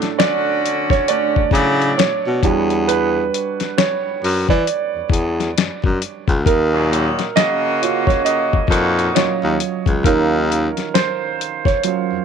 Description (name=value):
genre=R&B, neo-soul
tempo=67 BPM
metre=4/4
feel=swing 60% on 16ths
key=unclear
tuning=A4 = 442 Hz
part: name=warm concert grand piano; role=accompaniment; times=0.0-12.2 s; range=D#3 to D#5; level=-19 LUFS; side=right 8 dB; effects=none
part: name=warm horn section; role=stabs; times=0.0-9.4 s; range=A2 to D5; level=-21 LUFS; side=left 1 dB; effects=none
part: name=dusty soul sampler-style drum kit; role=drums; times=0.0-12.1 s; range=hi-hat, kick drum, snare drum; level=-19 LUFS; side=left 5 dB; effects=none
part: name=warm baritone saxophone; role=bass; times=1.4-12.2 s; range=C#2 to E3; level=-18 LUFS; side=left 2 dB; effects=none
room=light reverb, small room ambience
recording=1960s-style stereo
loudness=-15 LUFS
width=side -7 dB against mid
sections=0.0-12.2 A section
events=grand piano solo 0.0-12.2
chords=0.0 Bm9 (rootless); 2.4 Em9; 6.5 D#m9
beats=0.19 1.08 1.98 | 2.88 3.77 4.67 5.56 | 6.46 7.35 8.25 9.14 | 10.04 10.94 11.83